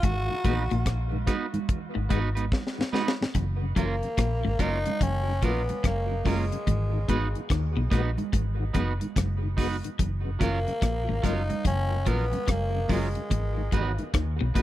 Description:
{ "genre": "roots reggae", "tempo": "72 BPM", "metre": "4/4", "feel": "swing 64% on 16ths", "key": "F# major", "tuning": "A4 = 435 Hz", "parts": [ { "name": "growling tenor saxophone", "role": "melody", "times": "0.0-14.1 s", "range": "G#3 to F#4", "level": "-33 LUFS", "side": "left 1 dB", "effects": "dub echo" }, { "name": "clean electric guitar", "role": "riff", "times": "0.0-14.6 s", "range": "F#2 to D#3", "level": "-34 LUFS", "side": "left 6 dB", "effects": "none" }, { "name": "vintage muted fingered electric bass", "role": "bass", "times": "0.0-14.6 s", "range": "F#1 to D#2", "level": "-28 LUFS", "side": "equal", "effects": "none" }, { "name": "deep reggae drum kit", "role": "drums", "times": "0.0-14.6 s", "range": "hi-hat, kick drum, rim click, snare drum", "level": "-27 LUFS", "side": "equal", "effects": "none" }, { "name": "congas", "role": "percussion", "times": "0.0-14.6 s", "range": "none", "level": "-37 LUFS", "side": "right 8 dB", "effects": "none" }, { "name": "mellow tonewheel organ", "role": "accompaniment", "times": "0.3-14.6 s", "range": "F#2 to F#4", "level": "-36 LUFS", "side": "left 2 dB", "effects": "chorus vibrato, slow rotary speaker, tube saturation, dub echo" }, { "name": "clean electric guitar", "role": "accompaniment", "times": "0.4-14.6 s", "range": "F#3 to B4", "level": "-34 LUFS", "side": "right 5 dB", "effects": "spring reverb, dub echo" } ], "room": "small room ambience", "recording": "dry, close 1970s-style studio recording", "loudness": "-24 LUFS", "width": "side -14 dB against mid", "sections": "0.0-3.4 A section; 3.4-14.6 B section", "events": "drum fill 2.5-3.4", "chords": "0.0 G#m7; 3.4 F#maj7; 6.7 G#m7; 10.0 F#maj7; 13.3 G#m7" }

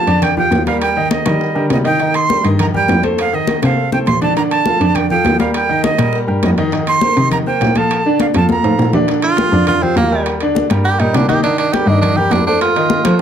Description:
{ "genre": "latin, salsa", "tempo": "203 BPM", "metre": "4/4", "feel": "straight", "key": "Bb major", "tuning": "A4 = 442 Hz", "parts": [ { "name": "bright jazz flute", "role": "melody", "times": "0.0-8.9 s", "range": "Eb5 to C6", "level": "-17 LUFS", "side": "right 4 dB", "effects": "none" }, { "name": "clear baby grand piano", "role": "accompaniment", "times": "0.0-13.2 s", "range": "D3 to Eb5", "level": "-18 LUFS", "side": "left 1 dB", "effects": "none" }, { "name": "dark cello", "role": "bass", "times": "0.1-13.2 s", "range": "Eb2 to F3", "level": "-18 LUFS", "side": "equal", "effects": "none" }, { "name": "bongos", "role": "percussion", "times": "0.1-13.2 s", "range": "none", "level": "-25 LUFS", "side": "left 5 dB", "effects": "none" }, { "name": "congas", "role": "percussion", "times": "0.1-13.2 s", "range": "none", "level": "-21 LUFS", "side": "left 2 dB", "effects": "none" }, { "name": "timbales", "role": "percussion", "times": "0.1-13.2 s", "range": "none", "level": "-24 LUFS", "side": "right 5 dB", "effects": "none" }, { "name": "bright tenor saxophone", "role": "melody", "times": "9.2-13.2 s", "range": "Bb3 to G4", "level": "-15 LUFS", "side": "right 4 dB", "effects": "none" } ], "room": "light reverb", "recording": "close, detailed microphones", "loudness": "-12 LUFS", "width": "side -8 dB against mid", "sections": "0.0-9.1 A section; 9.1-13.2 B section", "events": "drum fill 3.5-4.4, 8.2-9.1; tenor saxophone solo 9.1-13.2", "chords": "0.0 Bb6; 0.8 Eb; 2.0 Cm7; 3.2 F7; 4.4 Bbmaj7; 5.5 Eb; 6.7 F9sus4; 7.9 Bbmaj7; 9.1 Bb6; 10.3 Ebmaj7; 11.4 Cm7; 12.6 F7" }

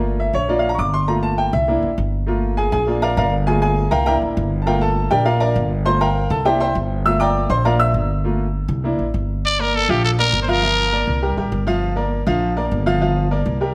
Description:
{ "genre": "latin, salsa", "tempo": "201 BPM", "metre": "4/4", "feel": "straight", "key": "unclear", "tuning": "A4 = 443 Hz", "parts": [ { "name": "clear grand piano", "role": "accompaniment", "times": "0.0-13.7 s", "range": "F3 to E6", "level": "-22 LUFS", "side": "equal", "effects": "none" }, { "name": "upright bass", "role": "bass", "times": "0.0-13.7 s", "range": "G1 to C2", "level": "-23 LUFS", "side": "equal", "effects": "none" }, { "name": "growling trumpet", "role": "melody", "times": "9.5-11.4 s", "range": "G4 to D5", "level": "-20 LUFS", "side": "equal", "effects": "none" } ], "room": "moderate large studio reverb, RT60 1.3 s", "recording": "none", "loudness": "-19 LUFS", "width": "mono", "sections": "0.0-9.4 A section; 9.4-13.7 B section", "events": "grand piano solo 0.0-9.4", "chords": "0.5 Bb; 1.1 Gm7; 1.7 C7; 2.3 Gm7; 2.9 Bb; 3.5 Gm7; 4.1 C7; 4.7 Gm7; 5.3 Bb; 5.9 Gm7; 6.5 C7; 7.1 Gm7; 7.7 Bb; 8.2 Gm7; 8.8 C7; 9.4 Gm7; 11.2 C5; 11.8 Gm7" }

